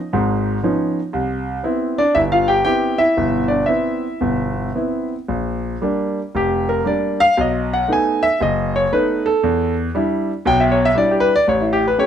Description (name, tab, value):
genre	solo jazz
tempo	117 BPM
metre	4/4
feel	swing 66% on 8ths, rubato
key	C major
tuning	A4 = 439 Hz
part	clear concert grand piano	solo	0.0-12.1 s	F1 to Ab5	-16 LUFS	equal	none
room	light reverb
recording	close, detailed microphones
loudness	-16 LUFS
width	side -9 dB against mid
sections	0.0-5.3 A section; 5.3-12.1 B section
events	grand piano solo 5.3-12.1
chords	0.0 Db9; 1.1 Cmaj7; 5.3 Bb6; 7.4 B7; 9.4 Em7; 11.5 A7